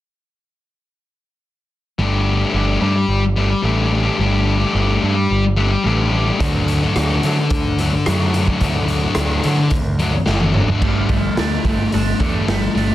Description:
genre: indie rock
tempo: 109 BPM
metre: 4/4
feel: straight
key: unclear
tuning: A4 = 440 Hz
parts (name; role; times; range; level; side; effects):
- thick fuzz guitar; riff; 2.0-12.9 s; D3 to G4; -18 LUFS; left 3 dB; distortion
- growling picked electric bass; bass; 2.0-12.9 s; F#1 to D3; -19 LUFS; right 1 dB; overdrive
- raw garage drum kit; drums; 6.4-12.9 s; crash cymbal, hi-hat, kick drum, rim click, snare drum, toms; -20 LUFS; right 1 dB; none
- clean electric guitar; riff; 10.8-12.9 s; A3 to D4; -25 LUFS; right 12 dB; analog chorus, digital delay
room: light reverb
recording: dense, heavily limited modern master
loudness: -15 LUFS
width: side -14 dB against mid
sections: 2.0-10.8 A section; 10.8-12.9 B section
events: drum fill 10.3-10.8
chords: 2.0 Gsus2; 6.4 D; 10.8 Gsus2

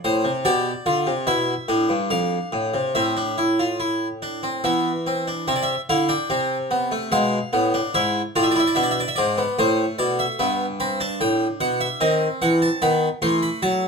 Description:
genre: classical, baroque-style 3-part fugue for harpsichord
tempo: 73 BPM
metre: 3/4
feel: straight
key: A minor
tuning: A4 = 443 Hz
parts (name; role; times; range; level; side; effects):
- harpsichord; solo; 0.0-13.9 s; F2 to C6; -19 LUFS; equal; none
room: light reverb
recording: minimal, uncompressed stereo recording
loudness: -19 LUFS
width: side -5 dB against mid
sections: 0.0-5.5 A section; 5.5-13.9 B section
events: none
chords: 0.5 Bm7b5; 3.0 Am; 4.6 E5; 5.5 Am/C; 7.1 G#dim7/B; 8.0 E7/G#; 9.6 Am; 10.4 Em/G; 12.0 D#dim7; 12.8 B7/D#

